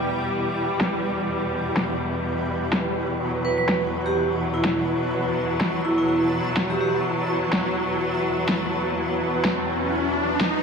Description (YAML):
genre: bass house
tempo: 125 BPM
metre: 4/4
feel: swing 55% on 16ths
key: E minor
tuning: A4 = 440 Hz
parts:
  - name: rich symphonic string section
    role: sustained chords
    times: 0.0-10.6 s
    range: E2 to G3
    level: -26 LUFS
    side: left 1 dB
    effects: none
  - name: granular cloud pad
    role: texture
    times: 0.0-10.6 s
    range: E4 to A5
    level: -27 LUFS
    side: right 1 dB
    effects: built-in reverb
  - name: electronic snare drum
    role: drums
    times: 0.8-10.5 s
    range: none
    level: -26 LUFS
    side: left 1 dB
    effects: overdrive, low-pass filter on cymbals, small room ambience, low-pass filter on snare
  - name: vibraphone with medium hard mallets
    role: melody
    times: 3.4-6.9 s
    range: E4 to B4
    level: -24 LUFS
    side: right 2 dB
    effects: tape echo
  - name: riser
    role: sound effects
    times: 8.0-10.6 s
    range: none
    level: -28 LUFS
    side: left 1 dB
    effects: none
room: moderate lush hall reverb, RT60 1.8 s, studio reverb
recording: none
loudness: -21 LUFS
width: side -5 dB against mid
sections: 0.0-10.6 A section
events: riser 8.0-10.6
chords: 0.0 Em